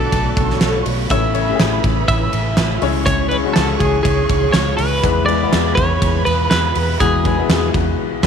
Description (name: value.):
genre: piano-driven pop.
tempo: 122 BPM.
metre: 4/4.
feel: swing 56% on 16ths.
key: unclear.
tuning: A4 = 439 Hz.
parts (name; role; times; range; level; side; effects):
twelve-string electric guitar; melody; 0.0-7.7 s; G#4 to E5; -20 LUFS; right 1 dB; tremolo.
warm symphonic violin section; second line; 0.0-8.3 s; B4 to D6; -26 LUFS; right 14 dB; none.
clear upright piano; accompaniment; 0.0-8.3 s; A2 to C#5; -21 LUFS; left 14 dB; none.
airy breathy pad; sustained chords; 0.0-8.3 s; B2 to C#5; -29 LUFS; left 1 dB; chorus.
vintage muted fingered electric bass; bass; 0.0-8.3 s; E1 to E2; -20 LUFS; right 1 dB; none.
huge arena drum kit; drums; 0.1-8.3 s; crash cymbal, hi-hat, kick drum, ride cymbal, snare drum; -19 LUFS; right 1 dB; none.
room: light reverb, studio ambience.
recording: 1960s-style stereo with parts hard left and right.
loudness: -14 LUFS.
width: side -7 dB against mid.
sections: 0.0-8.3 A section.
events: band accent 8.0.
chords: 0.0 Bm7; 1.1 A; 2.8 C#m; 5.0 E.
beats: 0.12 0.61 | 1.10 1.60 2.09 2.58 | 3.07 3.56 4.05 4.54 | 5.04 5.53 6.02 6.51 | 7.00 7.49 7.99.